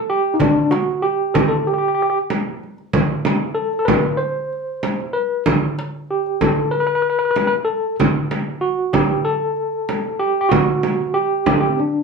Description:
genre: Turkish makam ensemble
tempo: 95 BPM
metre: 4/4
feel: straight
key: unclear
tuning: A4 = 441 Hz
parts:
  - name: overdriven tine electric piano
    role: melody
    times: 0.1-12.0 s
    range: C4 to C5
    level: -18 LUFS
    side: equal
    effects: fast tremolo
  - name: darbuka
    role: percussion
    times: 0.4-11.6 s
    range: none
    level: -25 LUFS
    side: left 1 dB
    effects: none
  - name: frame drum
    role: percussion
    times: 0.4-11.6 s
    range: none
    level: -20 LUFS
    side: right 3 dB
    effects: none
room: moderate studio reverb, RT60 0.6 s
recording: studio ambience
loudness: -17 LUFS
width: side -4 dB against mid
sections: 0.0-12.0 A section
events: break 11.8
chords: none

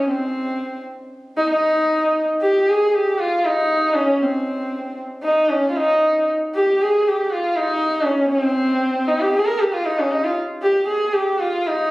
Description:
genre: indian classical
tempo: 117 BPM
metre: 4/4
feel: straight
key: C raga bhairavi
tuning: A4 = 439 Hz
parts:
  - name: dark sarangi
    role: solo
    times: 0.0-11.9 s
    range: C4 to Bb4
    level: -17 LUFS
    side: equal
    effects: none
room: moderate studio reverb, RT60 0.6 s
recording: recorded on a phone in the room, club reverb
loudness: -17 LUFS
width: side -19 dB against mid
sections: 0.0-11.9 A section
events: none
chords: none

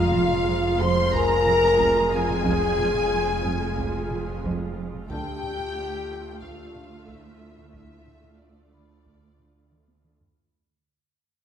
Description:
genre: cinematic, suspense film score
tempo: 91 BPM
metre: 4/4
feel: straight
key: unclear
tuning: A4 = 440 Hz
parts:
  - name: muted symphonic violin section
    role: melody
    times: 0.0-10.0 s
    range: D5 to C6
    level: -32 LUFS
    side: left 3 dB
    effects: none
  - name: muted symphonic violin section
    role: second line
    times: 0.0-10.0 s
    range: D5 to C6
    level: -30 LUFS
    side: left 1 dB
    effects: none
  - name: muted symphonic viola section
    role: accompaniment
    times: 0.0-10.1 s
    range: Ab3 to F4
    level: -34 LUFS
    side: right 2 dB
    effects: none
  - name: dark French horn section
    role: sustained chords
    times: 0.0-10.1 s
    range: D4 to C5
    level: -24 LUFS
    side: left 2 dB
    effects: none
  - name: muted symphonic cello section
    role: bass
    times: 0.0-10.1 s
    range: D2 to F2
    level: -34 LUFS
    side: right 4 dB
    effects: none
  - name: muted symphonic double bass section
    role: bass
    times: 0.0-10.1 s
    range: F1 to D2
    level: -35 LUFS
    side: right 3 dB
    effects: none
  - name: punchy sub bass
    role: drone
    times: 0.0-10.4 s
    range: F1 to D2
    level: -39 LUFS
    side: equal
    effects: none
  - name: timpani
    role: percussion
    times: 0.0-0.8 s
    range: F2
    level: -31 LUFS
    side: right 1 dB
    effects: none
  - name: vibraphone with medium hard mallets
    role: texture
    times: 0.0-10.4 s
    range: Ab5 to Cb6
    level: -37 LUFS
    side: left 3 dB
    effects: none
  - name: muted symphonic cello section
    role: riff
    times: 0.1-10.2 s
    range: F2 to D4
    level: -31 LUFS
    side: right 4 dB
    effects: none
  - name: solo taiko drums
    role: drums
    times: 0.1-10.5 s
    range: none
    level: -35 LUFS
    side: right 1 dB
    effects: none
room: wet scoring stage reverb, RT60 1.6 s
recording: none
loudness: -21 LUFS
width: side -8 dB against mid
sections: 0.0-10.4 A section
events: fade-out 0.0-10.4; drum fill 9.7-10.4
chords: 0.0 Fm; 5.1 Dm

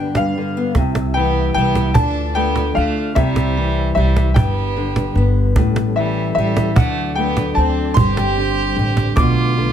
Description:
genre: acoustic folk duo or small band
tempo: 50 BPM (dotted quarters)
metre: 6/8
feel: straight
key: C major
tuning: A4 = 438 Hz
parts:
  - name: bright upright piano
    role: melody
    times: 0.0-9.7 s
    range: E5 to D6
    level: -22 LUFS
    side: left 2 dB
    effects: none
  - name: fingerpicked steel-string acoustic guitar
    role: accompaniment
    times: 0.0-9.7 s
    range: G2 to G4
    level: -21 LUFS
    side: left 2 dB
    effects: none
  - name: mellow tonewheel organ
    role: sustained chords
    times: 0.0-9.7 s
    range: F#3 to E5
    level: -28 LUFS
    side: right 2 dB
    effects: chorus vibrato, fast rotary speaker
  - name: cajon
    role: percussion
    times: 0.1-9.5 s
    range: none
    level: -17 LUFS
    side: right 2 dB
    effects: none
  - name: upright bass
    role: bass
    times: 0.8-9.7 s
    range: G1 to D2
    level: -20 LUFS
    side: equal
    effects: none
  - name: rich fiddle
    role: second line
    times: 1.1-9.7 s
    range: G3 to G4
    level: -24 LUFS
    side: right 4 dB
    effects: none
room: light reverb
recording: close, detailed microphones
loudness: -15 LUFS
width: side -9 dB against mid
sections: 0.8-9.7 A section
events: none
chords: 0.0 G; 0.8 C; 2.0 Dm; 3.2 C; 4.4 G; 5.6 A7; 6.8 D7; 8.0 Gsus4; 9.2 Bm7b5

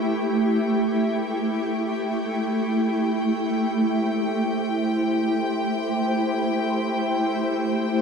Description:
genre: ambient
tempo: free time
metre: none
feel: none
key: A minor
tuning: A4 = 440 Hz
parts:
  - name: shimmering ambient pad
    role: sustained chords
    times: 0.0-8.0 s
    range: A3 to C5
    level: -22 LUFS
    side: equal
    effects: chorus, built-in reverb
  - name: rich chamber violin section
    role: texture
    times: 0.0-8.0 s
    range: G5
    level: -31 LUFS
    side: left 1 dB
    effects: none
  - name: analog drone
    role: drone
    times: 3.5-8.0 s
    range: A3 to E4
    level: -30 LUFS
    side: equal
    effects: chorus
room: wet lush hall reverb, RT60 2.8 s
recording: dark, warm production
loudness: -21 LUFS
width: side -6 dB against mid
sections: 0.0-1.8 A section; 1.8-8.0 A section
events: none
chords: 0.0 Em/A; 1.8 Am7

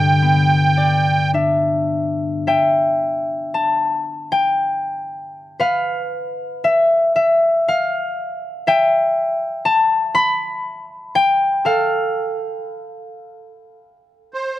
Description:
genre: celtic folk, Celtic slow air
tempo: 59 BPM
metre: 3/4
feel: uneven beats, rubato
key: G mixolydian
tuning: A4 = 445 Hz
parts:
  - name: musette accordion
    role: melody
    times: 0.0-1.3, 14.3-14.6 s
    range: C5 to G5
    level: -17 LUFS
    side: right 3 dB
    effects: none
  - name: concert harp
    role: accompaniment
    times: 0.0-14.3 s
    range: G2 to B5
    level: -16 LUFS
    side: left 1 dB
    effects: none
room: little or no reverb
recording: dry, close 1970s-style studio recording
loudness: -16 LUFS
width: side -14 dB against mid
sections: 0.0-2.5 A section; 2.5-14.6 B section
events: harp solo 2.5-14.6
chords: 0.0 G6; 2.5 N.C.

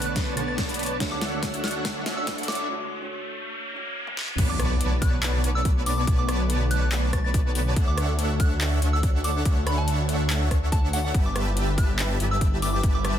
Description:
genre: future bass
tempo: 142 BPM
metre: 4/4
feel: half-time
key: B minor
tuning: A4 = 440 Hz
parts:
  - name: felt-muted upright piano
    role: accompaniment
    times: 0.0-4.4 s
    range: B2 to D5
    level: -36 LUFS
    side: right 4 dB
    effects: sidechain pumping, ping-pong delay
  - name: airy breathy pad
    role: sustained chords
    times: 0.0-13.2 s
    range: D3 to C#5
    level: -36 LUFS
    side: right 2 dB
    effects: chorus, phaser, sidechain pumping
  - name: dense compressed supersaw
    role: riff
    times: 0.0-13.2 s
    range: G3 to A5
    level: -30 LUFS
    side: equal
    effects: sidechain pumping, low-pass filter
  - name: wide detuned saw bass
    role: bass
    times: 0.0-13.2 s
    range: G1 to D2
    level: -26 LUFS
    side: equal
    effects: chorus, sidechain pumping
  - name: dubstep drum kit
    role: drums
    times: 0.0-13.1 s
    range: crash cymbal, handclaps, hi-hat, rim click, snare drum, toms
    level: -30 LUFS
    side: left 1 dB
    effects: overdrive
  - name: riser and impact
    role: sound effects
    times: 1.5-6.1 s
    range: none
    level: -34 LUFS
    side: left 1 dB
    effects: none
  - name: soft synth bell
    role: melody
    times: 0.1-13.1 s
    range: F#5 to A6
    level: -33 LUFS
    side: equal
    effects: chorus, sidechain pumping, ping-pong delay
  - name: electronic kick drum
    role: drums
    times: 0.2-12.9 s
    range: none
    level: -23 LUFS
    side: equal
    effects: overdrive
room: light reverb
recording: dense, heavily limited modern master, high-pass filter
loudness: -22 LUFS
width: side -10 dB against mid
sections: 0.0-4.4 A section; 4.4-13.2 B section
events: build-up 0.0-4.4; drum fill 0.0-2.7, 4.1-4.4; filter sweep on supersaw synth 0.0-4.4; filter sweep 0.0-4.4; riser 1.5-4.4; break 2.7-4.4; drop 4.4-13.2; impact 4.4-6.1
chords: 0.0 Bm7; 1.0 Dmaj7; 4.4 Bm7; 7.8 Dmaj7; 11.1 G6

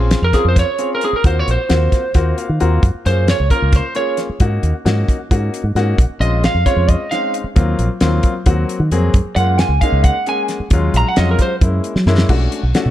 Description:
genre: electric jazz fusion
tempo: 266 BPM (eighths)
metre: 7/8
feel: straight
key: Eb dorian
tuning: A4 = 440 Hz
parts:
  - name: warm grand piano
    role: accompaniment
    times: 0.0-12.9 s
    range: Gb3 to Bb5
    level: -21 LUFS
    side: left 4 dB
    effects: none
  - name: fingered electric bass with an envelope filter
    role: bass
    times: 0.0-12.9 s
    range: Bb1 to Gb3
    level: -16 LUFS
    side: equal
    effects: none
  - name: damped 70s drum kit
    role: drums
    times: 0.1-12.9 s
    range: crash cymbal, hi-hat, kick drum, snare drum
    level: -16 LUFS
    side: equal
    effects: none
  - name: lightly driven lead guitar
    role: melody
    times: 0.2-11.5 s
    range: Ab4 to Bb5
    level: -18 LUFS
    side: right 2 dB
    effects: slapback echo
room: light reverb, small room reverb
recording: dark, warm production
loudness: -13 LUFS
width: side -13 dB against mid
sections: 0.0-12.3 A section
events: lead electric guitar solo 0.0-12.9; grand piano fill 2.1-2.8; drum fill 12.0-12.3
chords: 0.0 Bbm9; 1.2 Ebm69; 2.8 Gbmaj9; 4.4 Ab7sus4; 6.0 Bbm9; 7.6 Ebm69; 9.1 Gbmaj9; 10.7 Ebm11; 11.6 Gb7; 12.3 Bm7

